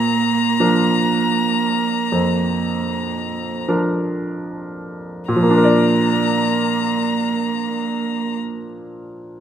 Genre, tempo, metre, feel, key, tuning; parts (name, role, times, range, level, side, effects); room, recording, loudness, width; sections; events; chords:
classical, slow romantic movement for piano trio; 36-41 BPM; 4/4; rubato; Bb major; A4 = 441 Hz
rich violin; melody; 0.0-8.4 s; Bb5; -23 LUFS; left 6 dB
rich cello; second line; 0.0-8.4 s; Bb3; -21 LUFS; right 7 dB
bright concert grand piano; accompaniment; 0.0-9.4 s; F2 to D5; -20 LUFS; equal
moderate recital hall reverb, RT60 1.6 s; close, detailed microphones; -16 LUFS; side -9 dB against mid
0.0-5.3 A section; 5.3-9.4 B section
slowing down 0.0-5.3
0.0 Bb